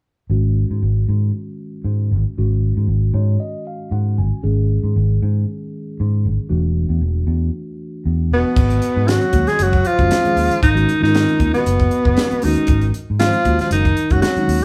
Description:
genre	electric jazz fusion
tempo	116 BPM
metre	4/4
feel	swing 54% on 16ths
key	unclear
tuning	A4 = 440 Hz
part	mellow tine electric piano	accompaniment	0.3-14.6 s	D#3 to G#5	-28 LUFS	equal	phaser
part	fingered electric bass	bass	0.3-14.6 s	E1 to G#2	-20 LUFS	equal	none
part	warm alto saxophone	melody	8.3-14.6 s	B3 to G#4	-20 LUFS	equal	none
part	mellow tenor saxophone	second line	8.3-14.6 s	B2 to G#3	-28 LUFS	equal	slapback echo
part	crisp fusion drum kit	drums	8.6-14.6 s	crash cymbal, hi-hat, kick drum, snare drum	-23 LUFS	equal	none
room	light reverb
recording	band playing live in one room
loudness	-17 LUFS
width	mono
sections	0.3-8.6 A section; 8.6-14.6 B section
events	tine electric piano fill 2.9-4.4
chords	0.3 G#5; 6.5 Esus2; 8.6 G#m7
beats	| 0.31 0.82 1.34 1.86 | 2.37 2.89 3.41 3.92 | 4.44 4.96 5.47 5.99 | 6.50 7.02 7.54 8.05 | 8.57 9.08 9.60 10.11 | 10.63 11.14 11.66 12.17 | 12.69 13.20 13.71 14.23

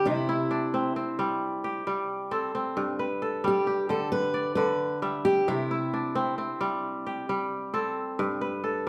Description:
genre	west african traditional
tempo	88 BPM (dotted quarters)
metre	12/8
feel	straight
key	unclear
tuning	A4 = 440 Hz
part	fingerpicked steel-string acoustic guitar	melody	0.0-7.2 s	E4 to B4	-31 LUFS	equal	none
part	kora	arpeggios	0.0-8.9 s	G2 to E5	-30 LUFS	equal	none
room	wet large studio reverb, RT60 1.1 s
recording	band playing live in one room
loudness	-28 LUFS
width	mono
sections	0.0-8.9 A section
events	none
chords	0.1 C; 2.8 G; 5.5 C; 8.2 G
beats	| 0.06 0.73 1.41 2.09 | 2.77 3.44 4.12 4.80 | 5.48 6.16 6.84 7.51 | 8.19 8.87

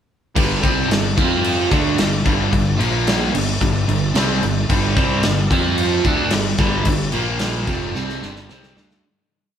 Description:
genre	hard rock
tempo	110 BPM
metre	4/4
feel	straight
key	G minor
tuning	A4 = 443 Hz
part	overdriven tonewheel organ	sustained chords	0.4-9.0 s	F3 to C5	-33 LUFS	left 2 dB	none
part	overdriven semi-hollow guitar	riff	0.4-9.0 s	F2 to F4	-20 LUFS	right 5 dB	phaser
part	tight distorted guitar	riff	0.4-9.0 s	F2 to F4	-24 LUFS	left 7 dB	distortion
part	fuzz fingered electric bass	bass	0.4-9.0 s	F1 to F2	-25 LUFS	left 1 dB	overdrive
part	big rock drum kit	drums	0.4-9.0 s	crash cymbal, kick drum, snare drum	-20 LUFS	left 1 dB	none
room	moderate stone room reverb, RT60 1.4 s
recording	band playing live in one room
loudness	-16 LUFS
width	side -9 dB against mid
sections	0.4-9.0 riff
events	fade-out 6.9-9.0; drum fill 8.0-9.0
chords	0.4 G5; 1.2 F5; 1.7 G5; 2.8 Bb5; 3.3 G5; 5.5 F5; 6.1 G5; 7.1 Bb5; 7.7 G5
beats	| 0.36 0.90 1.44 1.98 | 2.52 3.07 3.61 4.16 | 4.70 5.24 5.79 6.33 | 6.87 7.42 7.96 8.50

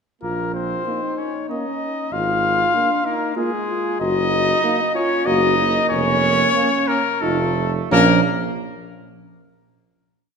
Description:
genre	classical, brass quintet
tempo	84-98 BPM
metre	3/4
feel	rubato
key	Bb minor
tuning	A4 = 441 Hz
part	warm trumpet	melody	0.2-8.2 s	Ab4 to F5	-21 LUFS	left 5 dB	none
part	mellow trumpet	second line	0.2-8.2 s	Ab3 to F4	-25 LUFS	right 7 dB	none
part	mellow French horn	accompaniment	0.2-8.2 s	Bb3 to Gb4	-24 LUFS	left 2 dB	none
part	mellow tuba	bass	0.2-8.2 s	F1 to Bb1	-23 LUFS	right 4 dB	none
part	mellow trombone	accompaniment	0.9-8.2 s	F3 to Eb4	-28 LUFS	right 5 dB	none
room	wet scoring stage reverb, RT60 1.9 s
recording	minimal, uncompressed stereo recording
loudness	-17 LUFS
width	side -5 dB against mid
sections	0.2-7.9 A section; 7.9-9.9 final chord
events	slowing down 3.1-7.9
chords	0.2 Bbm; 2.1 Bb5/Ab; 4.0 Ebm/Gb; 5.9 Bbm/F; 7.2 F7; 7.9 Bbm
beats	| 0.23 0.86 1.50 | 2.13 2.75 3.37 | 4.01 4.64 5.26 | 5.90 6.55 7.22 | 7.91

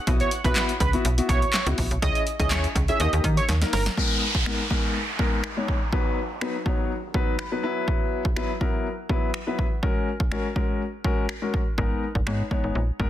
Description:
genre	dance-pop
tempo	123 BPM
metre	4/4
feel	straight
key	G# minor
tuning	A4 = 440 Hz
part	warm concert grand piano	accompaniment	0.1-13.1 s	F#3 to B5	-28 LUFS	left 3 dB	sidechain pumping
part	slap-like FM bass	bass	0.1-3.9, 11.8-13.1 s	G1 to D#3	-24 LUFS	equal	sidechain pumping
part	punchy analog drum machine	drums	0.1-13.1 s	finger snaps, handclaps, hi-hat, kick drum, snare drum	-25 LUFS	equal	none
part	octave-doubled lead	melody	0.2-3.8 s	A#4 to E5	-28 LUFS	right 4 dB	chorus, sidechain pumping, digital delay
part	downlifter	sound effects	4.0-7.9 s	none	-30 LUFS	right 1 dB	none
room	light reverb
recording	dense, heavily limited modern master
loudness	-22 LUFS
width	side -12 dB against mid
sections	0.0-4.0 A section; 4.0-13.1 B section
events	drop 0.0-4.0; drum fill 3.5-4.0; grand piano fill 7.1-7.9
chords	0.1 Esus2/B; 2.0 C#m; 3.0 D#; 4.0 G#madd9; 5.9 B; 7.6 Esus2; 9.8 F#add9; 11.8 G#madd9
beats	| 0.07 0.56 1.05 1.54 | 2.02 2.51 3.00 3.49 | 3.98 4.46 4.95 5.44 | 5.93 6.41 6.90 7.39 | 7.88 8.37 8.85 9.34 | 9.83 10.32 10.80 11.29 | 11.78 12.27 12.76

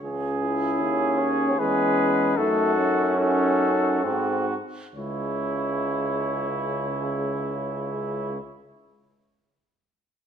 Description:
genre	classical, brass quintet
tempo	65-78 BPM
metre	3/4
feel	rubato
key	C# minor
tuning	A4 = 440 Hz
part	clear flugelhorn	second line	0.0-8.4 s	E4 to G#4	-28 LUFS	right 7 dB	none
part	mellow French horn	accompaniment	0.0-8.4 s	G#3 to D#4	-30 LUFS	left 2 dB	none
part	brilliant bass trombone	bass	0.0-8.4 s	C#2 to G#2	-30 LUFS	right 1 dB	none
part	dark trumpet	melody	0.4-8.4 s	E4 to C#5	-28 LUFS	left 7 dB	none
part	bright trombone	accompaniment	0.8-8.4 s	C#3 to C#4	-29 LUFS	right 3 dB	none
room	moderate recital hall reverb, RT60 1.4 s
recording	none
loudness	-22 LUFS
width	side -8 dB against mid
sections	0.0-5.0 A section; 5.0-7.6 B section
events	slowing down 0.0-5.0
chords	0.0 C#m; 1.6 C#m/E; 2.4 D#dim/F#; 4.0 G#7; 5.0 C#m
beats	| 0.04 0.81 1.59 | 2.38 3.18 4.04 | 4.95 5.85 6.74

